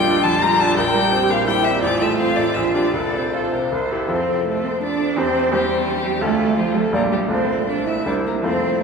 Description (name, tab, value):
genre	quick classical-period movement for piano trio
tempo	152-175 BPM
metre	3/4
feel	rubato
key	F major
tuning	A4 = 437 Hz
part	rich violin	melody	0.0-8.8 s	F4 to Bb5	-22 LUFS	left 5 dB	none
part	warm cello	second line	0.0-8.8 s	F3 to C5	-22 LUFS	right 4 dB	none
part	bright grand piano	accompaniment	0.0-8.8 s	A1 to F5	-21 LUFS	equal	none
room	wet cathedral reverb, RT60 4.6 s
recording	recorded in a church or concert hall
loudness	-17 LUFS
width	side -5 dB against mid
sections	0.0-4.1 A section; 4.1-8.8 B section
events	none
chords	0.0 Gm7/Bb; 0.8 C7/Bb; 1.8 F/A; 2.6 Gm/Bb; 2.9 F/C; 3.7 C; 4.1 F; 5.2 C/E; 6.2 Dm; 6.9 Gm7/Bb; 7.3 F/C; 8.1 C